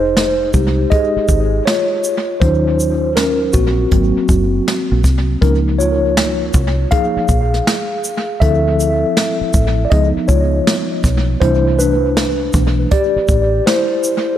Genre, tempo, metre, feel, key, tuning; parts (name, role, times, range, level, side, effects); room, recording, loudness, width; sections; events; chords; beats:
hip hop, jazz-hop; 80 BPM; 4/4; swing 65% on 16ths; A4 = 440 Hz
mellow tine electric piano; accompaniment; 0.0-14.4 s; E3 to F5; -16 LUFS; left 1 dB; medium stereo tremolo, analog delay
deep dub fingered electric bass; bass; 0.0-13.6 s; F1 to Eb2; -17 LUFS; equal
jazz brush drum kit; drums; 0.2-14.3 s; hi-hat, kick drum, shaker, snare drum; -17 LUFS; equal; analog delay
light reverb, small room ambience; echo-heavy mix; -12 LUFS; side -11 dB against mid
0.0-14.4 A section
tine electric piano solo 0.0-14.4
0.0 Fm7; 2.4 Ebm7; 3.9 Ab7; 5.4 Db6; 8.4 Dm7; 9.9 Db9; 11.4 C6
0.17 0.92 1.67 | 2.42 3.17 3.92 4.67 | 5.42 6.17 6.92 7.67 | 8.42 9.17 9.92 10.67 | 11.42 12.17 12.92 13.67